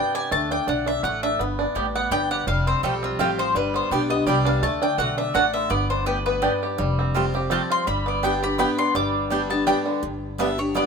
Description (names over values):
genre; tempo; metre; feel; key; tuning
bluegrass; 167 BPM; 3/4; swing 54% on 8ths; G mixolydian; A4 = 440 Hz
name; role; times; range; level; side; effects
mandolin; melody; 0.0-10.9 s; F4 to D6; -25 LUFS; left 2 dB; none
picked steel-string acoustic guitar; accompaniment; 0.0-10.9 s; F2 to G4; -28 LUFS; left 2 dB; none
bluegrass banjo; arpeggios; 0.0-10.8 s; D3 to G4; -25 LUFS; right 2 dB; none
upright bass; bass; 0.3-10.8 s; F1 to D2; -29 LUFS; equal; none
mandolin; stabs; 1.8-9.8 s; A3 to G5; -28 LUFS; right 3 dB; none
room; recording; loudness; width
light reverb; minimal, uncompressed stereo recording; -20 LUFS; side -5 dB against mid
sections
0.0-10.0 A section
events
none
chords
0.3 D5; 1.4 G; 2.5 Fadd9; 3.6 G; 4.6 D; 5.7 G; 6.8 Fadd9; 7.9 G